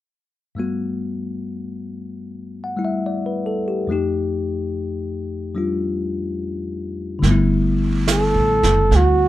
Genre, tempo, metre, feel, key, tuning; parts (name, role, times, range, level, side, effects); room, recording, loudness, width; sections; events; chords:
jazz ballad; 72 BPM; 4/4; swing 68% on 8ths; G major; A4 = 436 Hz
bell-like tine electric piano; accompaniment; 0.6-9.3 s; F2 to F#5; -22 LUFS; left 3 dB
upright bass; bass; 7.2-9.3 s; F#1 to D2; -18 LUFS; right 1 dB
vintage brush drum kit; drums; 7.2-9.3 s; brushed snare drum, hi-hat, snare drum; -25 LUFS; right 5 dB
mellow flugelhorn; melody; 8.1-9.3 s; F#4 to A4; -17 LUFS; right 2 dB
light reverb; minimal, uncompressed stereo recording; -19 LUFS; side -14 dB against mid
0.6-7.2 A section; 7.2-9.3 B section
0.6 Gmaj9; 3.9 F9; 7.2 G69